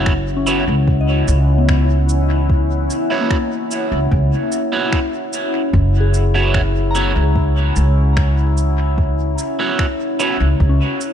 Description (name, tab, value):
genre	ambient dub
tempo	74 BPM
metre	4/4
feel	straight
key	F# mixolydian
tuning	A4 = 440 Hz
part	deep dark ambient pad	sustained chords	0.0-11.1 s	C#4 to F#5	-21 LUFS	left 1 dB	chorus, built-in reverb
part	soft synth bell	arpeggios	0.0-11.1 s	A#3 to A#5	-27 LUFS	left 5 dB	chorus, dub echo
part	electric guitar at the edge of break-up	stabs	0.0-10.4 s	B3 to C#5	-23 LUFS	right 4 dB	phaser, dub echo
part	upright bass	bass	0.0-10.8 s	F#1 to C#2	-15 LUFS	equal	none
part	electronic finger snaps and cabasa	drums	0.1-11.1 s	none	-30 LUFS	right 1 dB	small room ambience, dub echo
part	electronic kick drum	drums	0.1-10.8 s	none	-18 LUFS	equal	small room ambience
room	light reverb, digital ambience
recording	none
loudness	-14 LUFS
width	side -9 dB against mid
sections	0.0-11.1 A section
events	none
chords	0.0 F#7sus4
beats	0.06 0.87 1.68 | 2.50 3.31 4.12 4.93 | 5.74 6.55 7.36 8.17 | 8.98 9.79 10.60